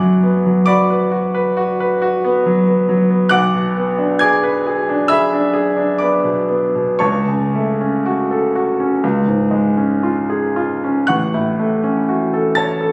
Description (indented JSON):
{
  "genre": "classical, romantic nocturne for solo piano",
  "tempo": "55-71 BPM",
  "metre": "4/4",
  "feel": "rubato",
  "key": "F# minor",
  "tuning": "A4 = 439 Hz",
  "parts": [
    { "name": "clear concert grand piano", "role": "solo", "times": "0.0-12.9 s", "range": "A1 to A6", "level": "-16 LUFS", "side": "equal", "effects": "none" }
  ],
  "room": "moderate recital hall reverb, RT60 1.5 s",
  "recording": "recorded on a phone in the room, studio reverb, compression",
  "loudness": "-16 LUFS",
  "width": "mono",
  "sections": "0.0-12.9 A section",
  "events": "none",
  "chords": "0.0 Bm/F#; 3.3 G#dim/B; 7.0 F#m/C#; 9.0 C#; 11.1 F#m/A"
}